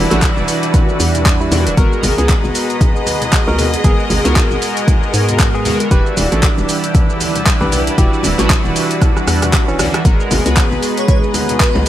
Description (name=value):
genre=deep house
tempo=116 BPM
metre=4/4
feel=swing 58% on 16ths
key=unclear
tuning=A4 = 438 Hz
part: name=warm analog pad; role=sustained chords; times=0.0-11.9 s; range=G#4 to E6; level=-26 LUFS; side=right 2 dB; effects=chorus, sidechain pumping
part: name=chorused polysynth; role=stabs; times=0.0-11.9 s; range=E3 to B4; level=-19 LUFS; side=equal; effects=sidechain pumping, tape echo
part: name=hollow knocking FM bass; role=bass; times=0.0-11.9 s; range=D1 to G#2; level=-18 LUFS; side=equal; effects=sidechain pumping
part: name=bright studio string section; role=texture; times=0.0-11.9 s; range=E4 to D#5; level=-24 LUFS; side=equal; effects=sidechain pumping
part: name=barky tine electric piano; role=melody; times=0.1-9.9 s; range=E3 to B4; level=-24 LUFS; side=equal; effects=medium stereo tremolo, digital delay
part: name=deep house drum kit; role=drums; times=0.1-11.9 s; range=handclaps, hi-hat, rim click, shaker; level=-19 LUFS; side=equal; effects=none
part: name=electronic kick drum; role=drums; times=0.2-11.7 s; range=none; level=-13 LUFS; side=equal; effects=none
part: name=congas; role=percussion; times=0.4-11.9 s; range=none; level=-25 LUFS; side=left 1 dB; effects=none
part: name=airy dreamy lead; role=melody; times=11.0-11.9 s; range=B4 to C#5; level=-21 LUFS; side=right 1 dB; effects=chorus, tape echo
room=light reverb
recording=vinyl crackle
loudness=-11 LUFS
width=side -12 dB against mid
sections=0.0-11.9 A section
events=drum fill 9.0-10.1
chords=0.0 Em9; 1.8 G#m9; 5.9 Em9; 10.1 G#m9